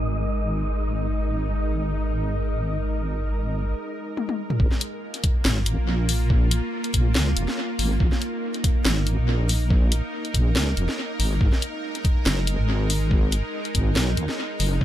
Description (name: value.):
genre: deep dubstep.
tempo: 141 BPM.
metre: 4/4.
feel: swing 54% on 16ths, half-time.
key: unclear.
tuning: A4 = 440 Hz.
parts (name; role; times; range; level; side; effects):
bowed-like drone; sustained chords; 0.0-14.8 s; Ab3 to Bb4; -30 LUFS; right 1 dB; built-in reverb.
deep soft wobble bass; bass; 0.0-14.8 s; F1 to Eb2; -23 LUFS; equal; chorus.
wind-like tuned noise texture; texture; 0.0-3.7 s; Eb5; -36 LUFS; right 2 dB; built-in reverb.
garage drum kit; drums; 4.2-14.7 s; hi-hat, snare drum, toms; -27 LUFS; left 1 dB; tape echo.
electronic kick drum; drums; 4.6-14.8 s; none; -21 LUFS; equal; none.
room: little or no reverb.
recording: echo-heavy mix, lossy compression artefacts.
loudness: -21 LUFS.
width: side -12 dB against mid.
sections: 0.0-4.6 A section; 4.6-14.8 B section.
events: filter sweep on synth drone 0.0-4.6; drum fill 4.2-4.6; drop 4.6-14.8.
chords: 0.0 Ab5; 4.6 Bb5; 11.4 Ab7(no3).